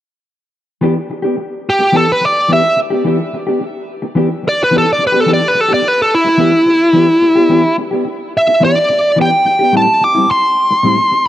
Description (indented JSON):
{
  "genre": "blues",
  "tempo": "108 BPM",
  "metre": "4/4",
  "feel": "straight",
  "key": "E minor",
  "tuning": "A4 = 440 Hz",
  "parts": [
    { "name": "mellow electric guitar", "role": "stabs", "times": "0.8-11.2 s", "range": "A2 to G4", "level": "-16 LUFS", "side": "left 1 dB", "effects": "spring reverb" },
    { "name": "smooth overdriven lead guitar", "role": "melody", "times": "1.7-11.3 s", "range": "E4 to D6", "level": "-11 LUFS", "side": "equal", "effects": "none" }
  ],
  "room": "light reverb",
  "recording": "none",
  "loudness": "-10 LUFS",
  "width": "side -12 dB against mid",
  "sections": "0.8-11.3 A section",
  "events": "none",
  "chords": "0.8 Em7; 9.7 Am7",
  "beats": "| 0.83 1.38 1.94 2.50 | 3.05 3.61 4.16 4.72 | 5.28 5.83 6.39 6.95 | 7.50 8.06 8.62 9.17 | 9.73 10.28 10.84"
}